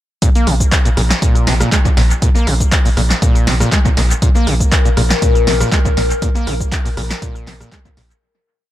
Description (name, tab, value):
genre	acid house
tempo	120 BPM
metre	4/4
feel	swing 53% on 16ths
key	unclear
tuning	A4 = 440 Hz
part	overdriven acid bass	riff	0.2-8.0 s	Bb2 to Bb3	-20 LUFS	equal	distortion, tube saturation, wide subtle chorus, vintage 12-bit sampler grit, sidechain pumping, dub echo
part	electronic kick drum	drums	0.2-7.9 s	none	-14 LUFS	equal	none
part	punchy analog drum machine	drums	0.2-8.2 s	cabasa, handclaps, hi-hat, rim click, snare drum	-19 LUFS	equal	analog delay
part	round analog bass	bass	0.5-8.1 s	Bb1	-17 LUFS	equal	tube saturation, sidechain pumping
part	warbly tape-like pad	sustained chords	4.7-8.2 s	Bb4	-21 LUFS	left 6 dB	chorus, built-in reverb, sidechain pumping
room	little or no reverb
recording	echo-heavy mix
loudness	-12 LUFS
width	side -14 dB against mid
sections	0.2-8.2 drop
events	drop 0.2-8.2; fade-out 5.6-8.2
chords	none